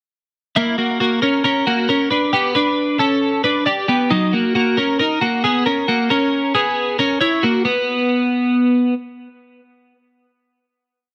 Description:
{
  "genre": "indie pop",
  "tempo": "135 BPM",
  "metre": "4/4",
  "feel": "straight",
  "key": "unclear",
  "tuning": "A4 = 440 Hz",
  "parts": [
    { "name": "twelve-string electric guitar", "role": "solo", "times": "0.6-8.9 s", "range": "F#3 to D5", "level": "-17 LUFS", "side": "equal", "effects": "analog chorus" }
  ],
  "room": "moderate studio reverb, RT60 0.7 s",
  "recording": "none",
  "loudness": "-17 LUFS",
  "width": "mono",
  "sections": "0.6-7.7 pre-chorus; 7.7-11.1 final note",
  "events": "none",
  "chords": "0.6 F#7; 2.1 G; 4.1 Bmaj7; 5.7 F#7; 7.7 N.C."
}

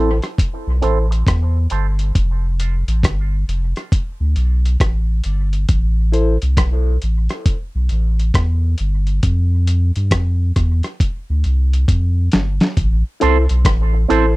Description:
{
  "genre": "dub reggae",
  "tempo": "68 BPM",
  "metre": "4/4",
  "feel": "swing 63% on 16ths",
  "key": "A minor",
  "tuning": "A4 = 440 Hz",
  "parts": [
    { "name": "electric guitar with an envelope filter", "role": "accompaniment", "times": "0.0-2.8, 13.2-14.3 s", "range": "C4 to C5", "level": "-22 LUFS", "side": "right 10 dB", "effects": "spring reverb, high-pass filter, low-pass filter, dub echo" },
    { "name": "reed electric piano", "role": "stabs", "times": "0.0-6.4, 13.2-14.3 s", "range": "E4 to D5", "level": "-22 LUFS", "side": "left 3 dB", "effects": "tremolo, high-pass filter, low-pass filter, dub echo" },
    { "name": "warm sub bass", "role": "bass", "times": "0.0-14.4 s", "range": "F1 to G2", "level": "-16 LUFS", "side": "equal", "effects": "none" },
    { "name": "dusty soul sampler-style drum kit", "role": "drums", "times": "0.2-14.4 s", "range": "hi-hat, kick drum, rim click, snare drum", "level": "-18 LUFS", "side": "equal", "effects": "overdrive" }
  ],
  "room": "little or no reverb",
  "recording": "dry, close 1970s-style studio recording",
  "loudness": "-15 LUFS",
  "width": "side -21 dB against mid",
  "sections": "0.0-12.8 A section; 12.8-14.4 B section",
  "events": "filter sweep 0.0-5.7; drum fill 11.9-12.8",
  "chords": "0.0 Am; 2.2 F; 3.9 Dm; 5.7 A5; 9.2 N.C.; 11.0 Dm; 12.8 Am"
}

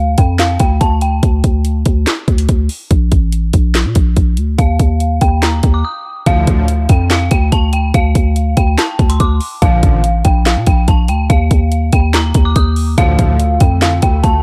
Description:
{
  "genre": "hip hop, trap",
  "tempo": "143 BPM",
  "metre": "4/4",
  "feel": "half-time",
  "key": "D phrygian",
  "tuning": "A4 = 440 Hz",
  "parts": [
    { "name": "dark detuned synth bell", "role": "melody", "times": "0.0-1.2, 4.6-14.4 s", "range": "F5 to Eb6", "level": "-21 LUFS", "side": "equal", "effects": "chorus, phaser, tape echo" },
    { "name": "growling 808-style bass", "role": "bass", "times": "0.0-14.4 s", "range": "A1 to Bb2", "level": "-16 LUFS", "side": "equal", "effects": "none" },
    { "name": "trap drum kit", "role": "drums", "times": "0.2-14.3 s", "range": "handclaps, hi-hat, kick drum, snare drum", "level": "-15 LUFS", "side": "equal", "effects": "none" },
    { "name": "big bright polysynth", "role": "stabs", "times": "6.3-6.7, 9.6-10.0, 13.0-13.4 s", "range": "A2 to F3", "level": "-23 LUFS", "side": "equal", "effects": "chorus, tape echo" },
    { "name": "hollow soft pad", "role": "sustained chords", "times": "13.0-14.4 s", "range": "D3 to A4", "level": "-28 LUFS", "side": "equal", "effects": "ensemble chorus" }
  ],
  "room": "little or no reverb",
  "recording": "dark, warm production",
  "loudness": "-13 LUFS",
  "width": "mono",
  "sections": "0.0-6.3 A section; 6.3-14.4 B section",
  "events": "break 5.8-6.3",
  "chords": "0.0 Dm; 2.9 N.C.; 4.6 Ebsus2; 6.3 Dm; 9.6 Bb; 11.3 Ebsus2; 13.0 Dm"
}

